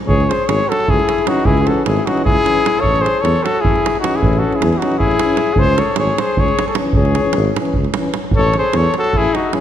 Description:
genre	balkan folk, Balkan brass band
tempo	305 BPM (eighths)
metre	7/8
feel	straight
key	unclear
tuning	A4 = 443 Hz
part	davul	percussion	0.0-9.6 s	none	-19 LUFS	right 2 dB	none
part	mellow trumpet	melody	0.1-9.6 s	F#4 to C#5	-17 LUFS	left 2 dB	none
part	clear flugelhorn	second line	0.1-9.6 s	D#4 to A4	-22 LUFS	left 4 dB	none
part	mellow tuba	bass	0.1-9.3 s	G#1 to E2	-19 LUFS	equal	none
part	warm euphonium	accompaniment	1.3-9.6 s	C#4	-25 LUFS	left 2 dB	none
part	warm euphonium	accompaniment	1.3-9.6 s	E3	-29 LUFS	right 2 dB	none
room	moderate scoring stage reverb, RT60 2.0 s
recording	none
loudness	-13 LUFS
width	side -10 dB against mid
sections	0.1-9.6 A section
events	none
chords	0.1 C#m; 2.8 A; 5.6 C#m; 8.3 A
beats	| 0.06 0.26 0.46 0.65 0.85 1.05 1.25 | 1.45 1.64 1.84 2.04 2.23 2.43 2.63 | 2.83 3.02 3.22 3.42 3.62 3.81 4.01 | 4.21 4.40 4.60 4.80 4.99 5.19 5.39 | 5.58 5.78 5.98 6.17 6.37 6.57 6.76 | 6.96 7.16 7.35 7.55 7.75 7.94 8.14 | 8.34 8.53 8.73 8.93 9.12 9.32 9.52

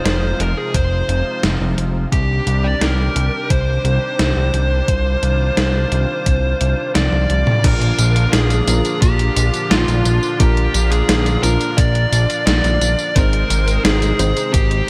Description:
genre	synthwave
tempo	87 BPM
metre	4/4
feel	straight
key	unclear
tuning	A4 = 440 Hz
part	fuzz lead guitar	melody	0.0-14.9 s	F4 to D5	-23 LUFS	equal	distortion, delay, shimmer reverb
part	brassy analog pad	sustained chords	0.0-14.9 s	Bb2 to C5	-28 LUFS	equal	chorus, sidechain pumping, shimmer reverb
part	fat analog bass	bass	0.1-14.8 s	F1 to C2	-20 LUFS	equal	none
part	gated 80s digital drum machine	drums	0.1-14.8 s	crash cymbal, hi-hat, snare drum, tambourine, toms	-22 LUFS	equal	gated reverb, gated reverb snare
part	electronic kick drum	drums	0.7-14.7 s	none	-19 LUFS	equal	none
part	dark grand piano	stabs	7.6-14.9 s	F3 to C5	-28 LUFS	equal	shimmer reverb
room	light reverb, digital ambience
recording	bright 1980s-style digital production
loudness	-17 LUFS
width	mono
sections	0.0-7.6 A section; 7.6-14.9 B section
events	drum fill 7.0-7.6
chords	0.0 Fm7; 2.1 Cmadd9; 7.6 Bb; 13.2 Ab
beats	0.06 0.74 1.44 | 2.12 2.81 3.50 4.19 | 4.88 5.57 6.26 6.95 | 7.64 8.33 9.02 9.71 | 10.40 11.09 11.78 12.47 | 13.16 13.85 14.54

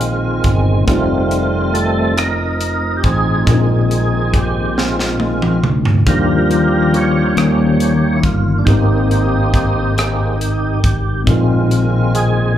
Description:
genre	slow gospel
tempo	46 BPM (dotted quarters)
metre	6/8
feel	straight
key	unclear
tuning	A4 = 440 Hz
part	mellow tine electric piano	accompaniment	0.0-12.6 s	Ab2 to C5	-17 LUFS	left 2 dB	medium stereo tremolo, slapback echo
part	tonewheel organ	sustained chords	0.0-12.6 s	Eb3 to Db5	-18 LUFS	right 2 dB	slow rotary speaker, overdrive, chorus vibrato
part	fingered electric bass	bass	0.0-12.6 s	F1 to Eb2	-19 LUFS	equal	none
part	crisp fusion drum kit	drums	0.0-12.3 s	hi-hat, kick drum, rim click, snare drum, toms	-18 LUFS	equal	none
room	light reverb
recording	live gig heard through the venue's PA, club reverb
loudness	-12 LUFS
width	side -11 dB against mid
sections	0.0-12.6 A section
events	tonewheel organ solo 0.0-12.6; drum fill 4.8-6.1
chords	0.0 Bb9sus4; 0.9 F7; 3.5 Bb9sus4; 6.1 Ebmaj9; 7.4 Eb7; 8.7 Abmaj9; 11.3 Bb9sus4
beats	| 0.88 2.18 | 3.48 4.78 | 6.08 7.38 | 8.68 9.97 | 11.27 12.57

